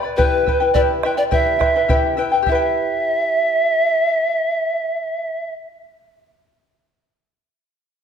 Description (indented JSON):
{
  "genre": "andean folk, Andean ensemble",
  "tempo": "105 BPM",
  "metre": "2/4",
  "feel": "straight",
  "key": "E minor pentatonic",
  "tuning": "A4 = 440 Hz",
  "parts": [
    { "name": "charango", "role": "accompaniment", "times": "0.0-6.0 s", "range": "E4 to B5", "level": "-19 LUFS", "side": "left 3 dB", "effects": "none" },
    { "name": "bright polished pan flute", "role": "melody", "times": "0.2-5.5 s", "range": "B4 to E5", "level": "-18 LUFS", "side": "right 1 dB", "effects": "none" },
    { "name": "bombo", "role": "percussion", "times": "0.2-2.7 s", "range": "none", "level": "-22 LUFS", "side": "right 1 dB", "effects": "none" }
  ],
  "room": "wet recital hall reverb, RT60 1.6 s",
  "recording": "none",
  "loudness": "-16 LUFS",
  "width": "side -7 dB against mid",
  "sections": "0.0-2.5 A section; 2.5-4.8 B section",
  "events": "none",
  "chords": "0.2 Em"
}